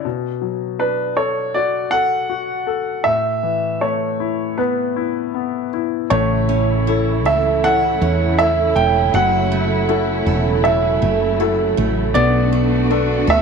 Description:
pop ballad; 80 BPM; 4/4; straight; A4 = 440 Hz
clear concert grand piano; accompaniment; 0.0-13.4 s; A2 to D5; -22 LUFS; left 12 dB
clear grand piano; melody; 0.8-13.4 s; B4 to G5; -19 LUFS; right 2 dB; slapback echo
warm studio string section; sustained chords; 6.1-13.4 s; C#3 to F#4; -24 LUFS; equal
picked steel-string acoustic guitar; arpeggios; 6.1-13.4 s; F#2 to A4; -22 LUFS; right 14 dB
woody fretless electric bass; bass; 6.1-13.4 s; E1 to E2; -20 LUFS; right 1 dB
light reverb, small room ambience; 1960s-style stereo with parts hard left and right; -16 LUFS; side -5 dB against mid
0.0-6.1 A section; 6.1-13.4 B section
0.0 Bm7; 3.1 Asus2; 6.1 A; 9.1 F#m7; 12.2 Bm7
| 0.04 0.80 1.55 2.30 | 3.06 3.82 4.58 5.35 | 6.11 6.88 7.64 8.39 | 9.14 9.89 10.65 11.40 | 12.15 12.90

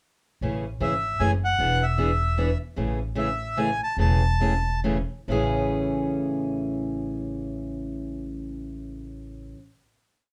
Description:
acoustic string swing (jazz manouche); 129-154 BPM; 3/4; swing 63% on 8ths; A major; A4 = 440 Hz
picked steel-string acoustic guitar; accompaniment; 0.4-9.6 s; A2 to G#4; -30 LUFS; equal
upright bass; bass; 0.4-9.5 s; E1 to A1; -30 LUFS; equal
accordion; melody; 0.8-4.8 s; E5 to A5; -28 LUFS; equal
moderate club reverb, RT60 0.6 s; -26 LUFS; mono
0.4-5.3 A section; 5.3-8.1 final chord
slowing down 2.8-5.3
0.4 Amaj7; 1.6 E7; 2.8 Amaj7
| 0.42 0.81 1.20 | 1.59 1.99 2.38 | 2.77 3.17 3.56 | 3.97 4.39 4.83 | 5.28 5.75 6.21 | 6.67 7.14 7.60

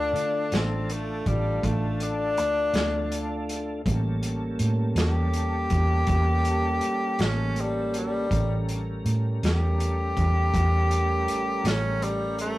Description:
slow blues; 54 BPM (dotted quarters); 12/8; straight; A4 = 441 Hz
bright tenor saxophone; melody; 0.0-12.6 s; G3 to G4; -27 LUFS; left 1 dB
tonewheel organ; sustained chords; 0.0-12.6 s; G3 to Bb4; -31 LUFS; equal; slow rotary speaker, chorus vibrato
vintage muted fingered electric bass; bass; 0.0-12.6 s; A1 to D3; -26 LUFS; equal
vintage drum kit; drums; 0.2-12.6 s; hi-hat, kick drum, snare drum; -30 LUFS; equal
moderate studio ambience, RT60 0.5 s; rough rehearsal-room recording; -23 LUFS; side -17 dB against mid
0.0-12.6 A section
tenor saxophone solo 0.0-12.6
0.0 Dm; 3.9 A7b9
0.52 1.63 2.75 | 3.86 4.97 6.08 7.19 | 8.31 9.42 10.53 11.64

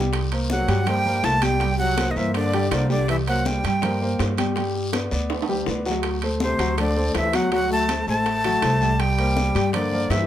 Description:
Afro-Cuban jazz; 162 BPM; 4/4; straight; A4 = 440 Hz
warm concert grand piano; accompaniment; 0.0-10.2 s; F#3 to G5; -26 LUFS; left 1 dB
upright bass; bass; 0.0-10.3 s; A1 to G2; -25 LUFS; right 1 dB
bongos; percussion; 0.0-10.3 s; -34 LUFS; left 6 dB
congas; percussion; 0.1-10.3 s; -32 LUFS; left 2 dB
guiro; percussion; 0.1-10.3 s; -37 LUFS; left 3 dB
timbales; percussion; 0.1-10.3 s; -32 LUFS; right 8 dB
breathy bright jazz flute; melody; 0.5-4.2, 6.4-10.3 s; C5 to A5; -24 LUFS; right 1 dB; plate reverb
trombone with plunger mute; second line; 0.5-4.2, 6.4-10.3 s; C3 to A3; -28 LUFS; left 3 dB
light reverb; -19 LUFS; side -11 dB against mid
0.0-10.3 A section
drum fill 5.3-6.0
0.1 Csus2; 4.6 G; 6.0 D7; 9.0 Csus2
| 0.13 0.50 0.87 1.24 | 1.61 1.98 2.35 2.72 | 3.08 3.46 3.82 4.19 | 4.56 4.93 5.30 5.67 | 6.04 6.41 6.78 7.15 | 7.52 7.89 8.26 8.63 | 9.00 9.37 9.74 10.11

